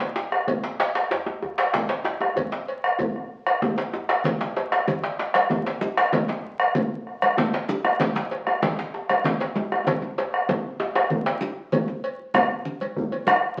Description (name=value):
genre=west african traditional, West African drum ensemble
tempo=128 BPM (dotted quarters)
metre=12/8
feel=straight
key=none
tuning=none
part: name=cowbell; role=percussion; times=0.0-13.3 s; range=none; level=-33 LUFS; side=equal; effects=none
part: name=djembe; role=percussion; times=0.0-13.6 s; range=none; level=-39 LUFS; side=equal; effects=none
part: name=djembe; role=percussion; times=0.0-11.4 s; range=none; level=-30 LUFS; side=equal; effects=none
part: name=bombo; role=percussion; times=0.3-13.5 s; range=none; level=-26 LUFS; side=equal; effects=none
part: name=congas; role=percussion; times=4.2-13.6 s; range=none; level=-32 LUFS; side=equal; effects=none
room=wet studio reverb, RT60 0.7 s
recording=very old 78 rpm record, vinyl crackle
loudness=-24 LUFS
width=mono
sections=0.0-11.7 A section; 11.7-13.6 B section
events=drum fill 9.9-11.7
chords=none